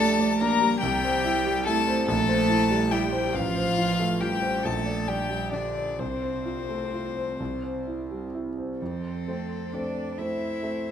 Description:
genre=classical, slow romantic movement for piano quartet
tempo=42-49 BPM (dotted quarters)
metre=6/8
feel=rubato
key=F major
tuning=A4 = 439 Hz
part: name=rich violin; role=melody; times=0.0-10.9 s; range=C5 to Bb5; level=-29 LUFS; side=left 7 dB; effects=none
part: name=warm cello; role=second line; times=0.0-10.9 s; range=C3 to E4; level=-29 LUFS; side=right 4 dB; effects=none
part: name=warm violin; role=second line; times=0.0-10.9 s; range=C4 to C5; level=-32 LUFS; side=left 3 dB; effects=none
part: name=warm concert grand piano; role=accompaniment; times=0.0-10.9 s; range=A1 to D5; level=-28 LUFS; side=right 1 dB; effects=none
room=wet recital hall reverb, RT60 1.6 s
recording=none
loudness=-24 LUFS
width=side -9 dB against mid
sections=0.0-8.8 A section; 8.8-10.9 B section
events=none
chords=0.0 Gm/Bb; 0.8 C; 2.1 C7/Bb; 3.3 F/A; 4.6 Gm/Bb; 6.0 F/C; 7.4 C; 8.8 F

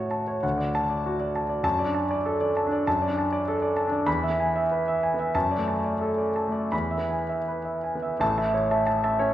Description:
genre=classical, romantic character piece for solo piano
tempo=77-103 BPM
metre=2/4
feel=rubato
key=A major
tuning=A4 = 438 Hz
part: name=clear grand piano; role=solo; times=0.0-9.3 s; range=A1 to B5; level=-23 LUFS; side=equal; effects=none
room=wet recital hall reverb, RT60 1.4 s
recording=recorded in a church or concert hall, nothing above 10.5 kHz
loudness=-23 LUFS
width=side -13 dB against mid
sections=0.0-8.2 A section; 8.2-9.3 B section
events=none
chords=0.4 D; 1.6 D/F#; 4.1 E; 5.3 D/F#; 6.7 E; 8.2 A

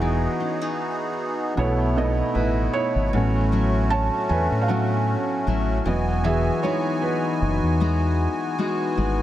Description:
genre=contemporary R&B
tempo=77 BPM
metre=4/4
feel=swing 54% on 16ths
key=E major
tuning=A4 = 438 Hz
part: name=felt-muted upright piano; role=accompaniment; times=0.0-9.2 s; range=B2 to A5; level=-26 LUFS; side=right 4 dB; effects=none
part: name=accordion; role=sustained chords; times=0.0-9.2 s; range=E3 to G#5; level=-27 LUFS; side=left 1 dB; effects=light tremolo tuning
part: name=picked steel-string acoustic guitar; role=arpeggios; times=0.0-9.2 s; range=A2 to F#4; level=-27 LUFS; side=left 3 dB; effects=digital delay
part: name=deep dub fingered electric bass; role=bass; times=0.0-9.2 s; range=E1 to A2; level=-23 LUFS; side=equal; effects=none
room=light reverb, small room reverb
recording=none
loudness=-20 LUFS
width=side -13 dB against mid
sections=0.0-3.1 A section; 3.1-9.2 B section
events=felt piano solo 3.1-9.2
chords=0.0 Emaj9; 1.6 B7sus4; 3.1 A6; 5.9 Emaj9

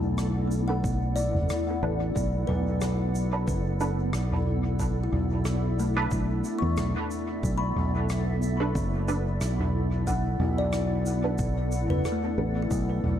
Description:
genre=ambient dub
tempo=91 BPM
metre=4/4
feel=swing 55% on 16ths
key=B minor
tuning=A4 = 440 Hz
part: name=granular cloud pad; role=sustained chords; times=0.0-13.2 s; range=B3 to F#5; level=-33 LUFS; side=equal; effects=built-in reverb
part: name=kalimba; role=arpeggios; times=0.0-13.2 s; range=A3 to C#6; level=-34 LUFS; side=left 2 dB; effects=dub echo
part: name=fingered electric bass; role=bass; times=0.0-13.2 s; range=F#1 to E2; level=-27 LUFS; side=equal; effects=none
part: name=soft-mallet drum kit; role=drums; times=0.2-13.2 s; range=rim click, shaker, toms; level=-33 LUFS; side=equal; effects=none
part: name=filtered dub chord stab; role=stabs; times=0.7-12.6 s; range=D4 to B4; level=-36 LUFS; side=right 3 dB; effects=phaser, ensemble chorus, dub echo
part: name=electronic kick drum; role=drums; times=0.8-12.9 s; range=none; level=-32 LUFS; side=equal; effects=overdrive
room=light reverb, studio reverb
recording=dark, warm production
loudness=-24 LUFS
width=side -10 dB against mid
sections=0.0-13.2 A section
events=none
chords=0.0 Bm7

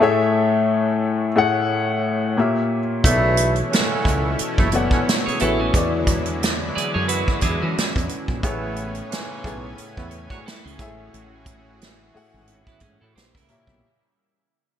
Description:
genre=R&B, neo-soul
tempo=89 BPM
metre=4/4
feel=swing 56% on 16ths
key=F# minor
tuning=A4 = 439 Hz
part: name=warm upright piano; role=accompaniment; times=0.0-13.8 s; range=A2 to A5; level=-21 LUFS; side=left 3 dB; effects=none
part: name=lush unison pad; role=sustained chords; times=3.0-13.8 s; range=C#3 to G#5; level=-30 LUFS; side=equal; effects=chorus
part: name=dark horn section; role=stabs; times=3.0-10.4 s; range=G#2 to F#4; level=-26 LUFS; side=right 2 dB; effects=none
part: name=woody fretless electric bass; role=bass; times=3.0-13.8 s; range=F#1 to E3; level=-26 LUFS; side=right 1 dB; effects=lush chorus
part: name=unplugged drum kit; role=drums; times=3.0-13.8 s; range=hi-hat, kick drum, snare drum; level=-22 LUFS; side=right 1 dB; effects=gated reverb
part: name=clean electric guitar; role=second line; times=5.3-13.8 s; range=B3 to D5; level=-27 LUFS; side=right 4 dB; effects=wide subtle chorus, ping-pong delay
room=wet plate reverb, RT60 1.6 s, small room ambience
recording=bright 1980s-style digital production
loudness=-18 LUFS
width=side -9 dB against mid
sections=0.0-13.8 A section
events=fade-out 0.0-13.8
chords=0.0 F#m9/A; 2.4 A#dim7; 3.0 Bm11; 5.7 E9; 8.4 Amaj9; 10.8 F#m9/A; 13.2 A#dim7

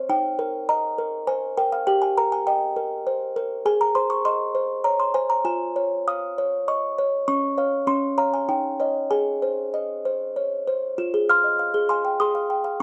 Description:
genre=classical, lullaby for music box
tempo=100 BPM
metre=3/4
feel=rubato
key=Ab major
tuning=A4 = 440 Hz
part: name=music box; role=solo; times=0.0-12.8 s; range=Db4 to F6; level=-23 LUFS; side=equal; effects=none
room=moderate small room reverb, RT60 0.5 s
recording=dark, warm production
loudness=-23 LUFS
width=mono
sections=0.0-11.0 A section; 11.0-12.8 B section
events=none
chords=0.1 Eb; 1.9 Eb/G; 3.7 Ab; 5.4 Db/F; 7.3 Db; 8.5 Eb7; 9.1 Ab; 11.0 Fm

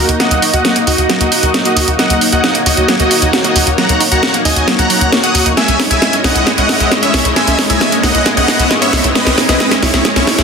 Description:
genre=uplifting trance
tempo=134 BPM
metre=4/4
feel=straight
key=unclear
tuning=A4 = 441 Hz
part: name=big supersaw lead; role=melody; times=0.0-10.4 s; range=E4 to D#6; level=-15 LUFS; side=equal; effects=low-pass filter, tape echo
part: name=lush unison pad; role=sustained chords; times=0.0-10.4 s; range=G#3 to D#5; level=-18 LUFS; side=left 1 dB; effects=chorus, phaser
part: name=analog pluck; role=arpeggios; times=0.0-10.4 s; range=F#3 to F#5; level=-20 LUFS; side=right 2 dB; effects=chorus, tape echo
part: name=tight sequencer bass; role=bass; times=0.0-10.4 s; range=C#2 to D#2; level=-17 LUFS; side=left 1 dB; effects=none
part: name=riser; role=sound effects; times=1.4-10.4 s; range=none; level=-23 LUFS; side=right 1 dB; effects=none
part: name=house drum kit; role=drums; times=0.1-10.4 s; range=hi-hat, snare drum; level=-14 LUFS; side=equal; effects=soft clipping on snare
room=moderate lush hall reverb, RT60 2.0 s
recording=dense, heavily limited modern master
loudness=-9 LUFS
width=side -5 dB against mid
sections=0.0-10.4 A section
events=build-up 0.0-10.4; drum fill 0.0-10.4; filter sweep on supersaw synth 0.0-10.4; riser 1.4-10.4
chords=0.0 D#m; 5.6 C#madd9

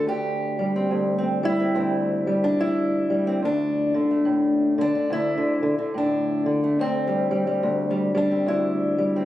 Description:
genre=folk, solo fingerstyle acoustic guitar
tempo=72 BPM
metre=4/4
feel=swing 62% on 8ths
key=unclear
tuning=A4 = 440 Hz
part: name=fingerpicked old ladder-braced acoustic guitar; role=solo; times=0.0-9.2 s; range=D2 to G4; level=-20 LUFS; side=equal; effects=none
room=light reverb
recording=recorded on a phone in the room, studio ambience, compression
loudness=-20 LUFS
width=side -13 dB against mid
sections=0.0-9.2 A section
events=none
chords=0.1 C/D; 3.4 D5; 6.8 C/D

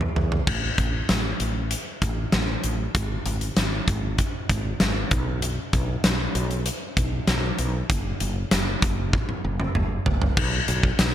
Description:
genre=1980s-style pop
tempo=97 BPM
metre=4/4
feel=straight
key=unclear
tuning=A4 = 440 Hz
part: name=woody fretless electric bass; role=bass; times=0.0-11.1 s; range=F#1 to E2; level=-26 LUFS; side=equal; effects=analog chorus
part: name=huge arena drum kit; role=drums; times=0.0-11.1 s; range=crash cymbal, hi-hat, kick drum, snare drum, tambourine, toms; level=-23 LUFS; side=equal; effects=none
room=light reverb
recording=none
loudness=-22 LUFS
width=side -11 dB against mid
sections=0.5-10.4 A section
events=drum fill 0.0-0.5, 9.1-10.4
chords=none

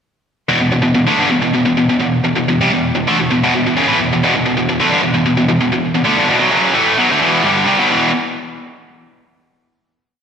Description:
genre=rock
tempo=129 BPM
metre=4/4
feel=straight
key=E minor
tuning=A4 = 439 Hz
part: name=tight distorted guitar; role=solo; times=0.5-8.1 s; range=E2 to A3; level=-12 LUFS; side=equal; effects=distortion, slapback echo
room=wet lush hall reverb, RT60 1.8 s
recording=big arena sound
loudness=-12 LUFS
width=side -7 dB against mid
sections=0.5-7.9 riff; 7.9-9.8 final chord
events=none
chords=0.5 Em; 7.9 E5

